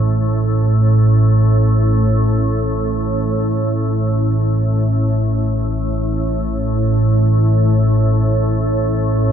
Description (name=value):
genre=ambient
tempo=free time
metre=none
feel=none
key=unclear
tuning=A4 = 438 Hz
part: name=organ-like drone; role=solo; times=0.0-9.3 s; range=A1 to A2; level=-14 LUFS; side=equal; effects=ensemble chorus, built-in reverb
room=wet cathedral reverb, RT60 6.0 s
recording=in a vast, echoing space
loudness=-14 LUFS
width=side -9 dB against mid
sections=0.0-2.2 A section; 2.2-9.3 A section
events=none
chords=none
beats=free time